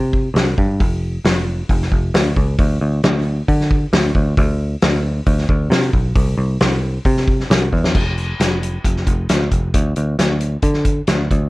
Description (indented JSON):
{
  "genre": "folk rock and heartland rock",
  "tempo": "134 BPM",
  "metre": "4/4",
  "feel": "straight",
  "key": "unclear",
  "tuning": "A4 = 440 Hz",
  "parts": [
    { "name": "picked electric bass", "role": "bass", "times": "0.0-11.5 s", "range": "F1 to D3", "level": "-18 LUFS", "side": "equal", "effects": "none" },
    { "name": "loose indie drum kit", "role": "drums", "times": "0.1-11.4 s", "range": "crash cymbal, hi-hat, kick drum, snare drum", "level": "-17 LUFS", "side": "equal", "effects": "none" }
  ],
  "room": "light reverb",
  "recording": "worn, warbling old tape, cassette tape, warbly pitch drift",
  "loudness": "-15 LUFS",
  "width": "side -20 dB against mid",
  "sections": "0.0-7.9 A section; 7.9-11.5 B section",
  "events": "drum fill 7.7",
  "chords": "none"
}